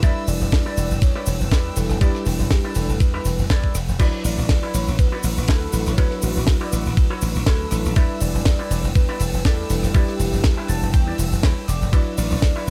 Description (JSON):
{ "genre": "nu-disco, nu disco", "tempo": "121 BPM", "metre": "4/4", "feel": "swing 55% on 16ths", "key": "unclear", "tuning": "A4 = 442 Hz", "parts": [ { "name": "soft octave-layered synth lead", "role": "melody", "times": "0.0-12.7 s", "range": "F#4 to E5", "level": "-34 LUFS", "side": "equal", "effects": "chorus, delay" }, { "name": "bell-like tine electric piano", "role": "accompaniment", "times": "0.0-12.7 s", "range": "F#3 to B4", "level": "-32 LUFS", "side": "equal", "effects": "none" }, { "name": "dark studio string section", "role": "sustained chords", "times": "0.0-12.7 s", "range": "D4 to E6", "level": "-39 LUFS", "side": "equal", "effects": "sidechain pumping" }, { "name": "electric guitar with an envelope filter", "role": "riff", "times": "0.0-12.7 s", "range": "E4 to A5", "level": "-35 LUFS", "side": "equal", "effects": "lush chorus" }, { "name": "slap bass", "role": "bass", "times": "0.0-12.7 s", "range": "E1 to E2", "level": "-25 LUFS", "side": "equal", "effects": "sidechain pumping" }, { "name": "electronic kick drum", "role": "drums", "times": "0.0-12.5 s", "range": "none", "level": "-20 LUFS", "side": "equal", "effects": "none" }, { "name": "tight funk drum kit", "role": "drums", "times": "0.0-12.7 s", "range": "crash cymbal, hi-hat, ride cymbal, rim click, snare drum", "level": "-31 LUFS", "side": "equal", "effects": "none" }, { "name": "cabasa", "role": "percussion", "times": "0.0-12.7 s", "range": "none", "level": "-37 LUFS", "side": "equal", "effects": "none" } ], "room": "studio ambience", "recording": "none", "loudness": "-20 LUFS", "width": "mono", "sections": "0.0-12.7 A section", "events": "clean electric guitar fill 10.4-11.9", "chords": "0.0 Em7; 4.0 D69; 8.0 Em7; 11.9 D69" }